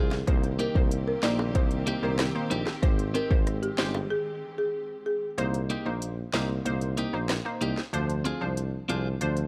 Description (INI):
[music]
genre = dancehall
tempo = 94 BPM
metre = 4/4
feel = straight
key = C minor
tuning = A4 = 441 Hz
[part]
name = folk marimba with medium mallets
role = melody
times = 0.0-5.2 s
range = G4 to D5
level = -34 LUFS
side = equal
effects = delay
[part]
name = warm studio string section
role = sustained chords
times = 0.0-5.4 s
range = D3 to G4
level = -41 LUFS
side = equal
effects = sidechain pumping
[part]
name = clean electric guitar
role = arpeggios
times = 0.0-9.1 s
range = Bb3 to Ab4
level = -34 LUFS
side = equal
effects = none
[part]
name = warm tuba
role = bass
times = 0.0-9.5 s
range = G1 to D2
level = -33 LUFS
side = equal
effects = none
[part]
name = afro-pop drum kit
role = drums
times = 0.1-9.5 s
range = hi-hat, kick drum, rim click, snare drum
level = -30 LUFS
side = equal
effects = none
[part]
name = bongos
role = percussion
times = 0.1-4.1 s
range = none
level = -39 LUFS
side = equal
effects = none
[part]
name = glassy wavetable pluck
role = accompaniment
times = 0.3-9.4 s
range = F3 to C5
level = -36 LUFS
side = equal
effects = chorus, sidechain pumping
[sound]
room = small room ambience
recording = dark, warm production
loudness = -28 LUFS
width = mono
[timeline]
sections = 0.0-5.4 A section; 5.4-9.5 B section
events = break 4.1-5.4; kick muted 5.4-9.5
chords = 0.3 Cm7; 2.8 Abmaj7; 5.4 Cm7; 7.9 Dm7b5